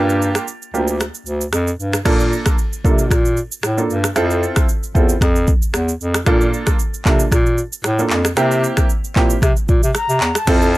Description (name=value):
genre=afrobeats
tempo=114 BPM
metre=4/4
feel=swing 55% on 16ths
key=unclear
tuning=A4 = 440 Hz
part: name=warm baby grand piano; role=accompaniment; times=0.0-10.8 s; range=Bb3 to A4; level=-20 LUFS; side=right 2 dB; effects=plate reverb
part: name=warm bass clarinet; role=bass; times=0.0-10.8 s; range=D2 to C3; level=-18 LUFS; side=equal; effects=none
part: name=afro-pop drum kit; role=drums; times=0.1-10.8 s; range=crash cymbal, finger snaps, handclaps, kick drum, rim click, shaker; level=-17 LUFS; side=equal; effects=none
part: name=jazz flute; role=melody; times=10.0-10.8 s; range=A5 to Bb5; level=-20 LUFS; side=left 2 dB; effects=plate reverb
room=little or no reverb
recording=none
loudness=-14 LUFS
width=side -18 dB against mid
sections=0.0-2.1 A section; 2.1-10.5 B section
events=break 0.0-2.1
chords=0.0 Gm7; 2.1 Bbmaj7; 4.2 Fmaj7; 6.3 Bbmaj7; 8.4 C7